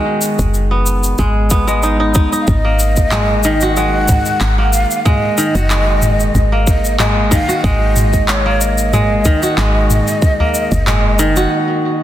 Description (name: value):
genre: organic downtempo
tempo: 93 BPM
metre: 4/4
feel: swing 54% on 16ths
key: unclear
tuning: A4 = 441 Hz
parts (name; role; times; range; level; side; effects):
- kora; arpeggios; 0.0-12.0 s; D#3 to F#4; -16 LUFS; equal; tape echo
- organic electronic drum kit; drums; 0.2-11.5 s; cabasa, handclaps, toms; -19 LUFS; equal; none
- woody FM bass; bass; 0.4-11.5 s; F#1 to G#1; -16 LUFS; equal; sidechain pumping
- electronic kick drum; drums; 0.4-10.8 s; none; -16 LUFS; equal; none
- breathy mellow ney; melody; 2.4-12.0 s; C#5 to F#5; -20 LUFS; right 1 dB; tape echo
- udu; percussion; 4.1-10.5 s; none; -19 LUFS; equal; none
room: light reverb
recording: dense, heavily limited modern master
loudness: -11 LUFS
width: side -12 dB against mid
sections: 0.0-12.0 A section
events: break 11.5-12.0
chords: 0.0 G#m7; 2.5 D#m